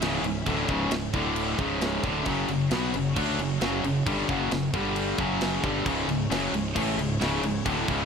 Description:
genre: heavy metal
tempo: 133 BPM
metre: 4/4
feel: straight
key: C# minor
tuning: A4 = 440 Hz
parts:
  - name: muted symphonic string section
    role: sustained chords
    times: 0.0-8.1 s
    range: C#3 to E5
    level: -39 LUFS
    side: right 1 dB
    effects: none
  - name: distorted electric guitar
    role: riff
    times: 0.0-8.1 s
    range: C#2 to D4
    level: -32 LUFS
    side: equal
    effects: distortion
  - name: heavy high-gain guitar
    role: riff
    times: 0.0-8.1 s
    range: C#2 to D4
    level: -30 LUFS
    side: right 10 dB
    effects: distortion
  - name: tight distorted guitar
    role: riff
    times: 0.0-8.1 s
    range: C#2 to D4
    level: -29 LUFS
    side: left 10 dB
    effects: distortion
  - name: fuzz fingered electric bass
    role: bass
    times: 0.0-8.1 s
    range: C#1 to D2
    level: -33 LUFS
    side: right 1 dB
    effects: overdrive
  - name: tight metal drum kit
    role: drums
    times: 0.0-8.0 s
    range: crash cymbal, kick drum, snare drum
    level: -32 LUFS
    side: equal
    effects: none
room: small room ambience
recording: none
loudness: -24 LUFS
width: side -6 dB against mid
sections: 0.0-8.1 A section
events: none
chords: 0.0 C#m; 1.1 D5; 1.6 C#m; 2.3 F#5; 4.7 G5; 5.2 F#5; 5.9 C#m

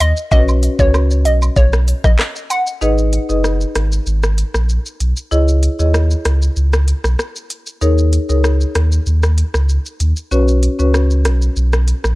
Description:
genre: dancehall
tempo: 96 BPM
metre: 4/4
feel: straight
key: G# minor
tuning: A4 = 439 Hz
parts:
  - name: hollow square pluck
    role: melody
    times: 0.0-2.6 s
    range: C#5 to F#5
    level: -19 LUFS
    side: equal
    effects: chorus, analog delay
  - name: sub bass with octave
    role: bass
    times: 0.0-12.2 s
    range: F#1 to D#2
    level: -14 LUFS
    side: equal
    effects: none
  - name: island pop drum kit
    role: drums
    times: 0.0-12.2 s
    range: handclaps, hi-hat, kick drum, rim click, shaker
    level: -19 LUFS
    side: equal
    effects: none
  - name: cabasa and woodblock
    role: percussion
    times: 0.0-2.7 s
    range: none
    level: -26 LUFS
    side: right 3 dB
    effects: none
  - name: marimba with medium mallets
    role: accompaniment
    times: 0.3-11.0 s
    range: C#4 to D#5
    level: -20 LUFS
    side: left 2 dB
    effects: none
room: little or no reverb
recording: dry, gritty hardware recording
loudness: -13 LUFS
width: side -19 dB against mid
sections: 0.0-2.8 A section; 2.8-12.2 B section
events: kick muted 2.8-12.2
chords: 0.3 Bsus2; 2.8 G#m; 5.3 C#madd9; 7.8 D#7sus4; 10.3 Bsus2

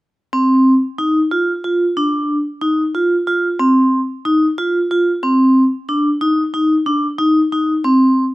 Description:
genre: progressive instrumental, progressive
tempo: 184 BPM (eighths)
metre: 5/8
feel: straight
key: unclear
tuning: A4 = 441 Hz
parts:
  - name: vibraphone with medium hard mallets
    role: solo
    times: 0.3-8.2 s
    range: C4 to F4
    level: -13 LUFS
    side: equal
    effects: none
room: light reverb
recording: recorded outdoors, with no room sound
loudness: -13 LUFS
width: side -19 dB against mid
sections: 0.3-6.9 A section; 6.9-8.3 B section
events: none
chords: none

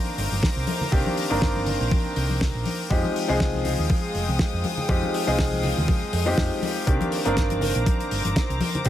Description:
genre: nu-disco, nu disco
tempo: 121 BPM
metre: 4/4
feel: swing 56% on 16ths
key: C minor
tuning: A4 = 440 Hz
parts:
  - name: bright grand piano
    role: accompaniment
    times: 0.0-8.9 s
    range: Eb3 to Bb4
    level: -26 LUFS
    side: equal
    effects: sidechain pumping, dub echo
  - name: warm studio string section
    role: sustained chords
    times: 0.0-8.9 s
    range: Ab3 to Eb6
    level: -32 LUFS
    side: left 1 dB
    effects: sidechain pumping
  - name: hollow-body short-scale fingered electric bass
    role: bass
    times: 0.2-8.9 s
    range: F1 to F2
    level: -27 LUFS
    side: right 1 dB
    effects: sidechain pumping
  - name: damped 70s drum kit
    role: drums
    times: 0.2-8.9 s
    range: hi-hat, snare drum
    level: -30 LUFS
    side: left 1 dB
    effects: none
  - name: congas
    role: percussion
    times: 0.3-8.8 s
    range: none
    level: -31 LUFS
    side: left 3 dB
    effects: none
  - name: electronic kick drum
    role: drums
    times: 0.4-8.9 s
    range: none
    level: -24 LUFS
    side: equal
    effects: none
room: studio reverb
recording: none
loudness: -21 LUFS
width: side -12 dB against mid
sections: 0.0-8.9 A section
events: none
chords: 0.0 Cm9; 2.9 Fm9; 6.9 Cm9

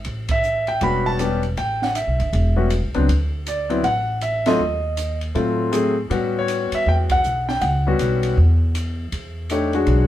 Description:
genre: jazz piano trio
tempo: 159 BPM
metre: 4/4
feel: swing 63% on 8ths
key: A mixolydian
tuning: A4 = 439 Hz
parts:
  - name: upright bass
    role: bass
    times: 0.0-10.1 s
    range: E1 to A2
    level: -21 LUFS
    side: equal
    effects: none
  - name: open jazz drum kit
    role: drums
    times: 0.0-10.0 s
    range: hi-hat, kick drum, ride cymbal, snare drum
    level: -30 LUFS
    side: right 2 dB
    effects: none
  - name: clear grand piano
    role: melody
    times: 0.3-10.1 s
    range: F#3 to B5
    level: -20 LUFS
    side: left 1 dB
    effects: none
room: moderate studio reverb, RT60 0.6 s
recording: band playing live in one room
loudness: -18 LUFS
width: side -13 dB against mid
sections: 0.0-10.1 A section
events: band accent 0.2, 4.4, 7.0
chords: 0.1 A13; 3.1 Dadd9; 4.6 D#dim7; 6.1 A13; 9.1 E13

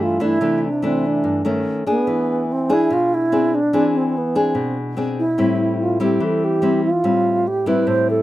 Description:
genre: bossa nova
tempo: 145 BPM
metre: 4/4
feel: straight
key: unclear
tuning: A4 = 440 Hz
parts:
  - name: mellow alto flute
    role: melody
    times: 0.0-8.2 s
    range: B3 to C5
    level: -19 LUFS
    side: right 1 dB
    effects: none
  - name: nylon-string guitar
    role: accompaniment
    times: 0.0-8.2 s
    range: G2 to Ab4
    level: -19 LUFS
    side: left 1 dB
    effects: none
room: light reverb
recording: rough home demo mix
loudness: -16 LUFS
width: side -15 dB against mid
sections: 0.0-8.2 A section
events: none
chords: 0.0 C69; 1.6 B9; 2.1 E7b13; 5.4 Am7

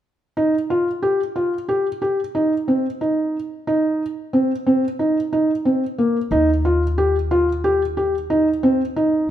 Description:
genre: contemporary instrumental, chamber music in an uneven meter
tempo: 182 BPM (eighths)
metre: 9/8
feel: straight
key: Eb major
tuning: A4 = 440 Hz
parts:
  - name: felt-muted upright piano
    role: arpeggios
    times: 0.4-9.3 s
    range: Bb3 to G4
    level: -18 LUFS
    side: equal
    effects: none
  - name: upright bass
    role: bass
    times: 6.3-9.2 s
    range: Eb2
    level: -24 LUFS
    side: left 1 dB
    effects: none
room: moderate recital hall reverb, RT60 1.5 s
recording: none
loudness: -17 LUFS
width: side -11 dB against mid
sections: 0.4-9.3 A section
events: none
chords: none

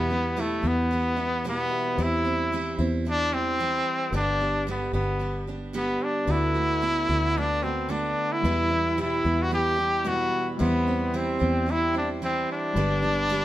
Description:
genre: pop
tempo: 111 BPM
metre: 4/4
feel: swing 55% on 16ths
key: unclear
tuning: A4 = 440 Hz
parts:
  - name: clear trumpet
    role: melody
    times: 0.0-13.4 s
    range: A3 to G4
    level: -25 LUFS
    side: equal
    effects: none
  - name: clear upright piano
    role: accompaniment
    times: 0.0-13.4 s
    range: G3 to C6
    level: -38 LUFS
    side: left 3 dB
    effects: none
  - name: picked steel-string acoustic guitar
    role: accompaniment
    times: 0.0-13.4 s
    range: E2 to G4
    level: -31 LUFS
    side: right 3 dB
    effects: none
  - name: fingered electric bass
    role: bass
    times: 0.0-13.4 s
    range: G1 to E2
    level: -28 LUFS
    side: equal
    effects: none
  - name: pedal harmonium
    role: sustained chords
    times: 6.3-13.4 s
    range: G3 to C6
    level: -38 LUFS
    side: equal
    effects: none
room: moderate studio reverb, RT60 0.8 s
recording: band playing live in one room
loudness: -23 LUFS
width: side -14 dB against mid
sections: 0.0-13.4 A section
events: none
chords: 0.0 Em; 2.0 C/E; 4.1 G; 6.3 D6; 8.4 Em; 10.6 C/E; 12.8 G

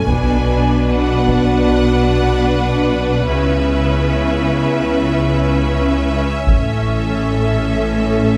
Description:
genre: cinematic, epic orchestral film score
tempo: 75 BPM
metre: 4/4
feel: straight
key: unclear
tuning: A4 = 439 Hz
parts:
  - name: rich symphonic violin section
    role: melody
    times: 0.0-8.4 s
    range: E5 to G#5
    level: -27 LUFS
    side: equal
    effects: none
  - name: rich symphonic violin section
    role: second line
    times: 0.0-8.4 s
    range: A4 to B4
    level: -25 LUFS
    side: equal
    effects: none
  - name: rich symphonic viola section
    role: accompaniment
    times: 0.0-8.4 s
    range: C#4 to D4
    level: -25 LUFS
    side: equal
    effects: none
  - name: mellow French horn section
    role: sustained chords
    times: 0.0-8.4 s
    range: A3 to F#4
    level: -24 LUFS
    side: equal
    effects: none
  - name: rich symphonic cello section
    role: bass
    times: 0.0-8.4 s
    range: A2 to C#3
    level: -23 LUFS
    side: equal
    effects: none
  - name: rich symphonic double bass section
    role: bass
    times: 0.0-8.4 s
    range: A1 to C#2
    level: -21 LUFS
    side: equal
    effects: none
  - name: taiko ensemble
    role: drums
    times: 0.1-1.7, 6.5-8.0 s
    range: none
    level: -22 LUFS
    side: equal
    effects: none
room: moderate concert hall reverb, RT60 2.2 s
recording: none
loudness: -16 LUFS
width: mono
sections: 0.0-8.4 A section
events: none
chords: 0.1 Bm; 3.3 C#m7; 6.5 A

